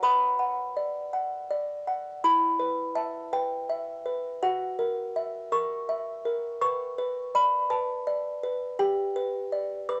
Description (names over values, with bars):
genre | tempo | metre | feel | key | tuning
classical, lullaby for music box | 55 BPM (dotted quarters) | 6/8 | straight | B minor | A4 = 441 Hz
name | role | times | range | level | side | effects
music box | solo | 0.0-10.0 s | E4 to D6 | -28 LUFS | equal | cassette tape
room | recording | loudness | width
light reverb, small room ambience | home recording on cassette | -29 LUFS | mono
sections
0.0-2.2 A section; 2.2-10.0 B section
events
none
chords
0.0 Bm; 2.2 Em; 4.4 F#7; 6.6 Bm; 8.8 G